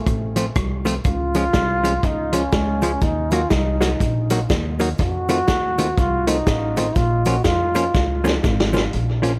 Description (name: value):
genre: ska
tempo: 122 BPM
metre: 4/4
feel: swing 61% on 8ths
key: Bb minor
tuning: A4 = 439 Hz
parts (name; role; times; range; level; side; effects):
- warm trombone; melody; 0.0-8.2 s; A3 to Gb4; -26 LUFS; equal; tape echo, plate reverb
- hollow-body jazz guitar; accompaniment; 0.1-9.3 s; Eb3 to Gb4; -24 LUFS; equal; plate reverb
- upright bass; bass; 0.1-9.4 s; Ab1 to F2; -26 LUFS; equal; none
- vintage drum kit; drums; 0.1-9.3 s; hi-hat, kick drum, rim click, snare drum; -25 LUFS; equal; tape echo
- cabasa; percussion; 0.1-8.8 s; none; -45 LUFS; equal; none
room: light reverb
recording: none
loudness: -20 LUFS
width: mono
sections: 0.0-8.9 A section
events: trombone solo 0.0-8.9; drum fill 7.9-8.9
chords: 0.0 F; 1.0 Db; 3.0 Ebm; 5.0 F7; 7.0 Bbm